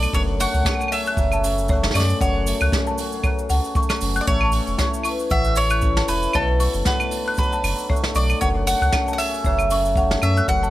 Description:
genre	folktronica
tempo	116 BPM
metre	4/4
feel	swing 56% on 16ths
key	F# minor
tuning	A4 = 445 Hz
part	mandolin	melody	0.0-10.7 s	A4 to F#5	-24 LUFS	right 1 dB	digital delay
part	cimbalom	arpeggios	0.0-10.7 s	F#2 to B4	-26 LUFS	left 2 dB	none
part	warm sub bass	bass	0.0-10.7 s	E1 to F#2	-22 LUFS	equal	none
part	jazz brush drum kit	drums	0.0-10.7 s	cabasa, claves, hi-hat, snare drum	-27 LUFS	right 2 dB	none
part	folk marimba with medium hard mallets	second line	0.1-10.7 s	C#5 to F#6	-28 LUFS	left 2 dB	tape echo
part	kick drum	drums	0.1-10.6 s	none	-24 LUFS	equal	none
room	light reverb, small room ambience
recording	none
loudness	-18 LUFS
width	side -15 dB against mid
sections	0.0-10.7 A section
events	none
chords	0.1 F#madd9; 4.3 Aadd9; 6.3 Bm7; 8.4 F#madd9

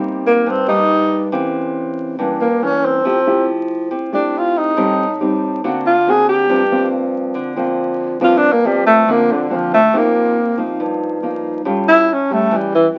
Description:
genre	bossa nova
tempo	139 BPM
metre	4/4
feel	straight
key	unclear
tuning	A4 = 442 Hz
part	nylon-string guitar	accompaniment	0.0-13.0 s	G2 to G4	-21 LUFS	equal	none
part	dark tenor saxophone	melody	0.3-12.9 s	D3 to Ab4	-16 LUFS	equal	none
room	moderate club reverb, RT60 0.6 s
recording	very old 78 rpm record, vinyl crackle, nothing above 7.7 kHz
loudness	-16 LUFS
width	mono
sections	0.0-9.9 A section; 9.9-13.0 A section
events	tenor saxophone solo 0.0-13.0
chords	0.0 Cm7; 1.3 C7b9; 3.0 Fmaj9; 4.8 Am7b5; 5.6 Daug7; 6.5 Gm7; 9.9 Cm7; 11.7 A7b13

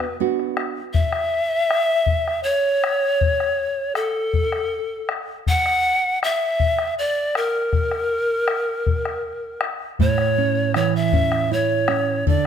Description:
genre	andean folk, Andean ensemble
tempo	80 BPM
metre	3/4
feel	straight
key	unclear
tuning	A4 = 441 Hz
part	breathy bright pan flute	melody	0.0-12.5 s	A4 to F#5	-20 LUFS	left 1 dB	none
part	nylon-string guitar	accompaniment	0.0-0.8, 10.0-12.5 s	A2 to F#4	-22 LUFS	right 9 dB	none
part	bombo	percussion	0.0-12.4 s	none	-24 LUFS	left 4 dB	none
room	light reverb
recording	close, detailed microphones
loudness	-18 LUFS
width	side -8 dB against mid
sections	0.9-12.5 A section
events	none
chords	0.0 Bm; 0.9 N.C.; 10.0 A

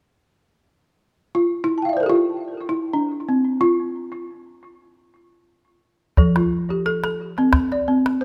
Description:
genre	west african traditional, West African string and xylophone music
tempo	free time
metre	none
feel	none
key	F major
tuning	A4 = 436 Hz
part	balafon	arpeggios	1.3-8.2 s	F3 to A5	-21 LUFS	equal	tape echo
part	calabash	percussion	6.2-8.2 s	none	-20 LUFS	equal	none
room	light reverb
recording	close, detailed microphones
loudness	-21 LUFS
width	mono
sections	0.7-6.2 A section; 6.2-8.2 B section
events	balafon solo 0.7-6.2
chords	0.7 N.C.; 6.2 F; 7.5 Amadd11 (rootless)

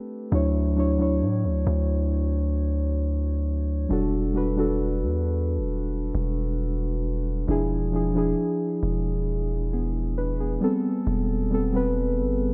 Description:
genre	contemporary R&B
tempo	67 BPM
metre	4/4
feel	straight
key	unclear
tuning	A4 = 437 Hz
part	muted felt-like synth keys	accompaniment	0.0-12.5 s	F3 to C#5	-28 LUFS	equal	chorus
part	long sustained 808-style bass	bass	0.3-12.5 s	E1 to A2	-28 LUFS	equal	none
room	light reverb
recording	none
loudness	-25 LUFS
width	mono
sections	0.0-12.5 A section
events	none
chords	0.3 Dmaj9; 3.9 Em11; 7.5 E7b9; 10.6 Am9/E

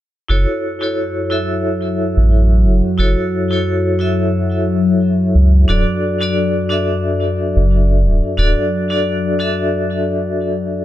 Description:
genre	trip hop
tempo	89 BPM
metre	4/4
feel	swing 56% on 16ths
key	F# minor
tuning	A4 = 438 Hz
part	vibraphone with hard mallets	accompaniment	0.3-10.8 s	D4 to E5	-19 LUFS	left 1 dB	tremolo, vintage 12-bit sampler grit, low-pass filter, tape echo
part	dark analog pad	sustained chords	0.3-10.8 s	F#3 to F#4	-18 LUFS	left 1 dB	chorus, phaser
part	soft dub sub bass	bass	0.3-8.5 s	D1 to C#2	-12 LUFS	equal	none
room	moderate spring reverb, RT60 1.6 s, studio reverb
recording	echo-heavy mix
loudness	-14 LUFS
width	side -13 dB against mid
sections	0.3-10.8 A section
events	filter sweep on analog synth pad 0.3-10.8; break 9.7-10.8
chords	0.3 F#m7; 5.7 D

